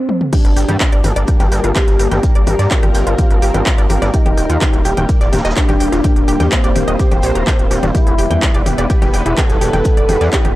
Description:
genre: melodic techno.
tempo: 126 BPM.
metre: 4/4.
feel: straight.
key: unclear.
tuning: A4 = 440 Hz.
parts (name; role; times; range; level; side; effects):
expressive portamento lead; melody; 0.0-10.6 s; C4 to A4; -21 LUFS; equal; wide subtle chorus, vintage 12-bit sampler grit, sidechain pumping, tape echo.
techno drum kit; drums; 0.1-10.5 s; congas, crash cymbal, handclaps, hi-hat, toms; -20 LUFS; left 1 dB; none.
lush unison pad; sustained chords; 0.7-10.6 s; G3 to C5; -24 LUFS; left 1 dB; chorus, phaser, sidechain pumping.
wide unison pluck; arpeggios; 0.3-10.5 s; D4 to Bb6; -23 LUFS; right 1 dB; cassette tape, sidechain pumping, analog delay.
electronic kick drum; drums; 0.3-10.4 s; none; -14 LUFS; equal; none.
shaker and snare drum; drums; 0.3-10.4 s; none; -33 LUFS; equal; none.
deep dark ambient pad; texture; 1.2-10.6 s; Bb3 to G5; -28 LUFS; left 1 dB; none.
gritty driven synth bass; bass; 0.4-10.5 s; Eb1 to G2; -17 LUFS; equal; sidechain pumping.
room: digital ambience.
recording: dry, gritty hardware recording.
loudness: -11 LUFS.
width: side -16 dB against mid.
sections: 0.3-10.6 A section.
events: break 0.0-0.3; drum fill 0.1; drop 0.3-10.6.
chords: 0.3 Gm; 4.1 Eb; 7.9 Em.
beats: | 0.33 0.80 1.28 1.76 | 2.23 2.71 3.19 3.66 | 4.14 4.61 5.09 5.57 | 6.04 6.52 6.99 7.47 | 7.95 8.42 8.90 9.38 | 9.85 10.33.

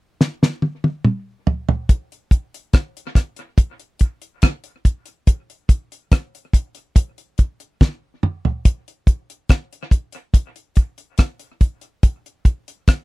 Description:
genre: reggae.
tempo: 71 BPM.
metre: 4/4.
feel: straight.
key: none.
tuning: none.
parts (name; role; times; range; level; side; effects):
damped 70s drum kit; drums; 0.2-13.0 s; hi-hat, kick drum, rim click, snare drum, toms; -13 LUFS; equal; none.
room: light reverb.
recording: dry, close 1970s-style studio recording.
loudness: -18 LUFS.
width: side -22 dB against mid.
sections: 0.0-1.9 A section; 1.9-8.7 B section; 8.7-13.0 C section.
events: drum fill 0.2-1.9, 7.8-8.7.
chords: none.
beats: 0.20 1.05 | 1.89 2.74 3.58 4.43 | 5.27 6.12 6.96 7.81 | 8.65 9.50 10.34 11.19 | 12.03 12.88.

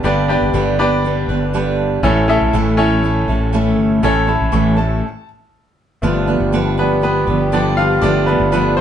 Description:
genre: pop.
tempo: 120 BPM.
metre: 4/4.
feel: straight.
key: unclear.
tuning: A4 = 439 Hz.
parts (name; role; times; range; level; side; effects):
bright baby grand piano; accompaniment; 0.0-8.8 s; G2 to C#6; -18 LUFS; left 1 dB; none.
fingerpicked steel-string acoustic guitar; riff; 0.0-8.8 s; G2 to B4; -18 LUFS; right 2 dB; none.
fretless electric bass; bass; 0.0-8.8 s; G1 to A1; -19 LUFS; left 1 dB; none.
mellow French horn section; second line; 6.0-8.8 s; G3 to G4; -21 LUFS; left 2 dB; none.
room: moderate studio reverb, RT60 0.8 s.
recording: band playing live in one room, nothing above 10.5 kHz.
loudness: -13 LUFS.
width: side -9 dB against mid.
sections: 0.0-6.0 A section; 6.0-8.8 B section.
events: stop 5.0-6.0; grand piano solo 6.0-8.8.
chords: 0.0 G; 2.0 A; 6.0 G7.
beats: | 0.05 0.55 1.04 1.54 | 2.04 2.54 3.04 3.54 | 4.04 4.54 5.03 5.53 | 6.03 6.53 7.03 7.53 | 8.03 8.53.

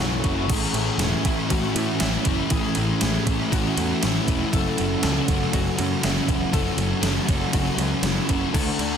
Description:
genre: rock, shoegaze and dream pop.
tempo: 119 BPM.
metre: 4/4.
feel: straight.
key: A major.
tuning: A4 = 440 Hz.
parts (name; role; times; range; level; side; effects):
glassy FM pad; sustained chords; 0.0-0.5 s; A4 to C#6; -37 LUFS; left 1 dB; ensemble chorus, built-in reverb.
picked twelve-string acoustic guitar; arpeggios; 0.0-9.0 s; E4 to A5; -32 LUFS; left 4 dB; wide subtle chorus, slapback echo.
distorted electric guitar; riff; 0.0-0.5 s; F#2 to F#3; -31 LUFS; equal; overdrive.
raw garage guitar; riff; 0.0-9.0 s; F#2 to F#4; -28 LUFS; right 14 dB; overdrive, reverse reverb.
thick fuzz guitar; riff; 0.0-9.0 s; F#2 to D4; -26 LUFS; left 9 dB; distortion, analog chorus.
overdriven picked electric bass; bass; 0.0-8.9 s; E1 to A2; -27 LUFS; right 1 dB; none.
gated 80s digital drum machine; drums; 0.2-8.9 s; crash cymbal, kick drum, ride cymbal, snare drum; -25 LUFS; right 1 dB; gated reverb, gated reverb snare, overdrive.
room: little or no reverb.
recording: dense, heavily limited modern master.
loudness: -20 LUFS.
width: side -8 dB against mid.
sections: 0.5-9.0 A section.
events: none.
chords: 0.5 Amaj7; 4.5 F#m7.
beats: | 0.50 1.00 1.50 2.01 | 2.51 3.02 3.52 4.02 | 4.53 5.03 5.53 6.03 | 6.54 7.04 7.54 8.04 | 8.55.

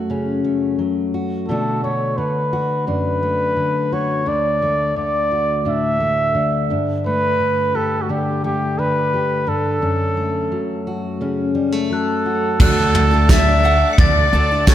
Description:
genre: indie folk with a building arrangement.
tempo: 86 BPM.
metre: 4/4.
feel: straight.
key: D major.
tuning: A4 = 440 Hz.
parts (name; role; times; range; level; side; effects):
fingerpicked steel-string acoustic guitar; accompaniment; 0.0-12.6 s; D2 to G4; -21 LUFS; left 2 dB; slapback echo.
warm trumpet; melody; 1.5-14.7 s; F#4 to E5; -19 LUFS; right 1 dB; slapback echo.
glockenspiel with hard plastic mallets; second line; 11.9-14.7 s; F#6 to C#7; -25 LUFS; left 5 dB; slapback echo.
felt-muted upright piano; accompaniment; 12.6-14.7 s; D2 to D5; -30 LUFS; left 1 dB; none.
picked steel-string acoustic guitar; accompaniment; 12.6-14.7 s; D3 to A4; -25 LUFS; left 4 dB; slapback echo.
warm studio string section; sustained chords; 12.6-14.7 s; A4 to D6; -30 LUFS; equal; none.
tenor ukulele; arpeggios; 12.6-14.7 s; F#4 to F#5; -25 LUFS; right 6 dB; slapback echo.
upright bass; bass; 12.6-14.7 s; D2; -18 LUFS; right 1 dB; none.
soft brush drum kit; drums; 12.6-14.7 s; crash cymbal, kick drum, snare drum, toms; -15 LUFS; right 1 dB; none.
tambourine; percussion; 13.3-14.7 s; none; -35 LUFS; right 13 dB; none.
room: moderate lush hall reverb, RT60 2.2 s.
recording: big arena sound.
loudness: -16 LUFS.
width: side -11 dB against mid.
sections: 0.0-12.6 A section; 12.6-14.7 B section.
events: none.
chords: 0.0 F#m; 1.5 Bm7; 4.3 Dadd9; 6.7 Gsus2; 9.8 F#m; 12.6 D.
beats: 0.09 0.79 | 1.48 2.18 2.87 3.57 | 4.26 4.96 5.66 6.35 | 7.05 7.74 8.44 9.13 | 9.83 10.52 11.22 11.91 | 12.60 13.29 13.99 14.68.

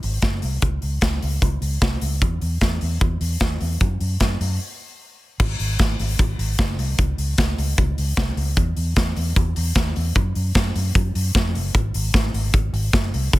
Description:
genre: jangly indie pop.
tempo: 151 BPM.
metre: 4/4.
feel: straight.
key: Ab mixolydian.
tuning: A4 = 442 Hz.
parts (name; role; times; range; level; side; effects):
vintage muted fingered electric bass; bass; 0.0-13.4 s; Gb1 to Gb2; -22 LUFS; equal; none.
big rock drum kit; drums; 0.0-13.4 s; crash cymbal, hi-hat, kick drum, snare drum; -21 LUFS; equal; none.
room: little or no reverb.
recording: dense, heavily limited modern master.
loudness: -19 LUFS.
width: side -18 dB against mid.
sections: 0.0-5.4 A section; 5.4-13.4 B section.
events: break 4.6-5.4.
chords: none.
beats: 0.23 | 0.63 1.03 1.43 1.82 | 2.22 2.62 3.02 3.42 | 3.81 4.21 4.61 5.01 | 5.40 5.80 6.20 6.59 | 6.99 7.39 7.78 8.18 | 8.58 8.97 9.37 9.77 | 10.16 10.56 10.95 11.35 | 11.75 12.14 12.54 12.93 | 13.33.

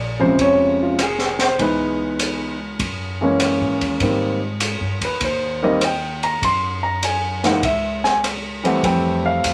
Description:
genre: jazz piano trio.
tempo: 99 BPM.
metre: 4/4.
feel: swing 68% on 8ths.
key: unclear.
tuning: A4 = 440 Hz.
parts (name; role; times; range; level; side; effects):
warm concert grand piano; melody; 0.0-9.5 s; C3 to C6; -21 LUFS; equal; none.
upright bass; bass; 0.0-9.5 s; F1 to Ab2; -30 LUFS; equal; none.
open jazz drum kit; drums; 0.4-9.5 s; hi-hat, kick drum, ride cymbal, rim click, snare drum; -26 LUFS; equal; none.
room: moderate studio ambience, RT60 0.5 s.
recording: none.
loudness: -20 LUFS.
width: mono.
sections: 0.0-9.5 A section.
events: none.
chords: 0.0 Bbm9; 1.6 Dbm7; 2.8 Gb9; 4.0 Abmaj9; 6.4 Gb7sus2; 8.8 Fmaj7.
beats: 0.39 0.99 | 1.59 2.19 2.80 3.40 | 4.01 4.61 5.21 5.82 | 6.42 7.03 7.63 8.23 | 8.84 9.44.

